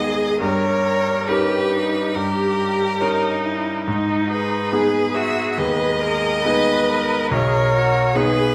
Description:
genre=classical, slow romantic movement for piano quartet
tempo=70 BPM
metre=4/4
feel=rubato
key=G# minor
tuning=A4 = 438 Hz
part: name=rich violin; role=melody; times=0.0-8.5 s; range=A#4 to E5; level=-25 LUFS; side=equal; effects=none
part: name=clear cello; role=second line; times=0.0-8.5 s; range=D#4 to B4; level=-27 LUFS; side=equal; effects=none
part: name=clear baby grand piano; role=accompaniment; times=0.0-8.5 s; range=B1 to A#4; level=-24 LUFS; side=equal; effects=none
part: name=rich viola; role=accompaniment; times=0.0-8.5 s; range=D#4 to B4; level=-26 LUFS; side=equal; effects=none
room=wet recital hall reverb, RT60 1.3 s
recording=none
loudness=-20 LUFS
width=mono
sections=0.0-8.5 A section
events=none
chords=0.4 D#7/G; 3.9 G#m; 7.3 G#m/B

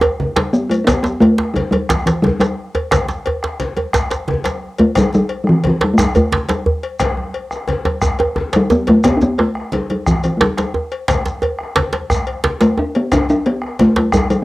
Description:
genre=west african traditional, West African drum ensemble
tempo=118 BPM (dotted quarters)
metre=12/8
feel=straight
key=G major pentatonic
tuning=A4 = 440 Hz
part: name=bombo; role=percussion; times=0.0-14.3 s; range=none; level=-22 LUFS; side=equal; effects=none
part: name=cowbell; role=percussion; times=0.0-14.4 s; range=none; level=-24 LUFS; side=left 4 dB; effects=none
part: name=djembe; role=percussion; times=0.0-14.3 s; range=none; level=-18 LUFS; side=right 2 dB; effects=none
part: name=congas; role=percussion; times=0.2-14.4 s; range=none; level=-27 LUFS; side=right 2 dB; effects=none
part: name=djembe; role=percussion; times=0.2-14.2 s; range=none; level=-26 LUFS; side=left 2 dB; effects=none
part: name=talking drum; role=melody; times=0.4-14.4 s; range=E3 to D4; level=-14 LUFS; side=left 1 dB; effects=cassette tape
part: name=shekere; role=percussion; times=0.5-14.4 s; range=none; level=-28 LUFS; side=left 1 dB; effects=none
room=moderate studio reverb, RT60 0.5 s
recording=home recording on cassette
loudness=-14 LUFS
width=side -18 dB against mid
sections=0.9-14.4 A section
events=drum fill 0.0-0.9, 8.4-9.0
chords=none

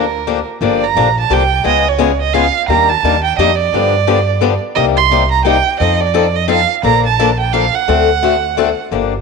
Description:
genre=acoustic string swing (jazz manouche)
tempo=174 BPM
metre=3/4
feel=swing 60% on 8ths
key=G minor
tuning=A4 = 440 Hz
part: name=warm violin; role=melody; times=0.0-8.8 s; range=Bb4 to C6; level=-14 LUFS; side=right 12 dB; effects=none
part: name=picked swing-style acoustic guitar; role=accompaniment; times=0.0-9.1 s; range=C3 to A4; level=-15 LUFS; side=left 12 dB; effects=none
part: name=upright bass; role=bass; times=0.0-9.2 s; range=G1 to G2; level=-18 LUFS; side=right 1 dB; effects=none
room=moderate echo chamber reverb, RT60 2.1 s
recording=1960s-style stereo with parts hard left and right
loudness=-11 LUFS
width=side -4 dB against mid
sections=0.6-8.9 A section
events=none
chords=0.0 Gm7; 1.7 C#7; 2.7 Ebmaj7; 3.7 G7; 4.8 Cm7; 5.8 F7; 6.8 Bbmaj7; 7.9 D7

